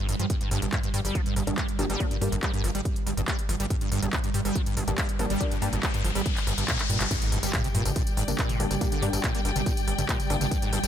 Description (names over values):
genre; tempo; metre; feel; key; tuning
driving peak-time techno; 141 BPM; 4/4; straight; G minor; A4 = 441 Hz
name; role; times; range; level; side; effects
acid bass, saw; riff; 0.0-10.9 s; G2 to Bb3; -32 LUFS; equal; ensemble chorus, sidechain pumping, tape echo
swarming drone; drone; 0.0-10.9 s; G2 to G3; -35 LUFS; right 5 dB; built-in reverb, sidechain pumping
gritty driven synth bass; bass; 0.1-10.9 s; G1 to G2; -29 LUFS; equal; sidechain pumping
techno drum kit; drums; 0.1-10.9 s; crash cymbal, handclaps, hi-hat, tambourine, toms; -32 LUFS; equal; sidechain pumping on hats, sidechain pumping on cymbals, sidechain pumping on perc, sidechain pumping on toms
electronic kick drum; drums; 0.3-10.6 s; none; -29 LUFS; equal; none
filtered dub chord stab; stabs; 1.5-10.5 s; G3 to D4; -34 LUFS; left 3 dB; analog chorus, sidechain pumping, tape echo
riser and impact; sound effects; 5.1-8.8 s; none; -33 LUFS; left 2 dB; none
warm symphonic string section; texture; 7.1-10.9 s; G4 to G5; -34 LUFS; left 4 dB; sidechain pumping
room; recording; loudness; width
little or no reverb; none; -24 LUFS; side -10 dB against mid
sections
0.0-7.1 A section; 7.1-10.9 B section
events
riser 5.1-7.1; drum fill 6.8-7.1; band accent 7.0; drop 7.1-10.9; impact 7.1-8.8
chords
0.0 Gm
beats
| 0.30 0.73 1.15 1.58 | 2.00 2.43 2.85 3.28 | 3.71 4.13 4.56 4.98 | 5.41 5.83 6.26 6.68 | 7.11 7.53 7.96 8.39 | 8.81 9.24 9.66 10.09 | 10.51